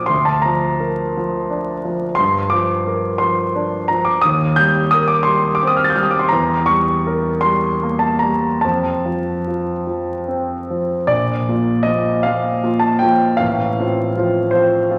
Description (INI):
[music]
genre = classical, romantic nocturne for solo piano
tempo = 47-59 BPM (dotted quarters)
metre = 6/8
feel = rubato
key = Bb major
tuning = A4 = 440 Hz
[part]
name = warm concert grand piano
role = solo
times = 0.0-15.0 s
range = A1 to A6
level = -18 LUFS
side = equal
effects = none
[sound]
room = wet scoring stage reverb, RT60 1.4 s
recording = vinyl crackle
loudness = -18 LUFS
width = mono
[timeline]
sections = 0.0-11.1 A section; 11.1-15.0 B section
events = none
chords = 0.1 Bb/D; 2.2 Gm7; 4.3 Eb6; 6.3 Edim7; 8.6 F; 11.1 Bb; 13.4 F/A